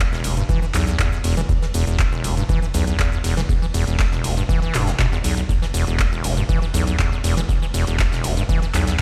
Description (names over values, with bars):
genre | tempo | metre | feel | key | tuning
acid house | 120 BPM | 4/4 | straight | unclear | A4 = 440 Hz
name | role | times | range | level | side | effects
round analog bass | bass | 0.0-8.9 s | E1 to B1 | -25 LUFS | equal | tube saturation, sidechain pumping
punchy analog drum machine | drums | 0.0-9.0 s | handclaps, hi-hat, ride cymbal, shaker | -30 LUFS | equal | none
soft brush drum kit | drums | 0.0-9.0 s | ride cymbal, snare drum | -39 LUFS | equal | none
acid bass, square | riff | 0.1-9.0 s | E1 to E3 | -25 LUFS | equal | tube saturation, sidechain pumping, digital delay
electronic kick drum | drums | 0.5-9.0 s | none | -23 LUFS | equal | none
room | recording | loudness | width
little or no reverb | played on a big sound system in a bare room, large studio reverb | -20 LUFS | mono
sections
0.0-9.0 A section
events
none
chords
0.0 E5